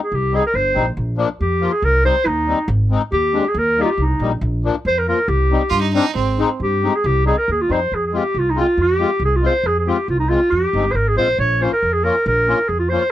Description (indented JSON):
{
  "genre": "klezmer",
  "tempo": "138 BPM",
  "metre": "2/4",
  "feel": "straight",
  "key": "C minor, F minor from 7.9 s",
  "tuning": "A4 = 439 Hz",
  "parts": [
    { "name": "warm clarinet", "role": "melody", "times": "0.0-13.1 s", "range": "Eb4 to Db5", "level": "-17 LUFS", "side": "equal", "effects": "none" },
    { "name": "upright bass", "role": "bass", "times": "0.1-13.0 s", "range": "G1 to G2", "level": "-20 LUFS", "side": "equal", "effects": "none" },
    { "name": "accordion", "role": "accompaniment", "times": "0.3-13.0 s", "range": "F3 to F4", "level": "-21 LUFS", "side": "left 6 dB", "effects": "light tremolo tuning" },
    { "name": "clear violin", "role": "second line", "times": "5.7-6.5 s", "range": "C4 to F4", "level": "-21 LUFS", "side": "right 8 dB", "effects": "none" }
  ],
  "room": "light reverb",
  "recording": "dry, close 1970s-style studio recording",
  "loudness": "-15 LUFS",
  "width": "side -13 dB against mid",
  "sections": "1.0-7.9 A section; 7.9-13.1 B section",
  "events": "none",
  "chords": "0.1 Cm; 1.0 Bb; 1.8 Cm; 2.7 Ab; 3.6 Eb; 4.4 Bb; 5.3 Cm; 6.2 Ab; 7.0 Cm; 7.9 Fm; 11.4 Bbm"
}